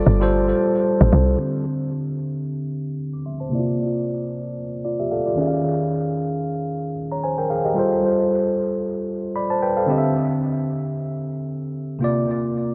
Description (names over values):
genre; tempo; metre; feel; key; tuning
amapiano; 113 BPM; 4/4; swing 55% on 16ths; D minor; A4 = 440 Hz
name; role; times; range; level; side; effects
clear concert grand piano; melody; 0.0-0.8 s; D5; -46 LUFS; equal; none
tine electric piano; accompaniment; 0.0-12.7 s; C3 to D6; -23 LUFS; equal; low-pass filter, tape echo
tight log drum bass; bass; 0.0-1.4 s; G1 to C2; -18 LUFS; equal; none
room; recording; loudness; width
moderate spring reverb, RT60 2.4 s; echo-heavy mix; -22 LUFS; mono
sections
0.0-1.4 A section; 1.4-12.7 B section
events
drop 0.0-1.4; filter sweep on tine electric piano 1.4-12.7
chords
0.0 G9sus4; 1.4 D9sus4; 3.5 C9sus4; 5.4 Eb9sus4; 7.8 G9sus4; 9.9 D9sus4; 12.0 C9sus4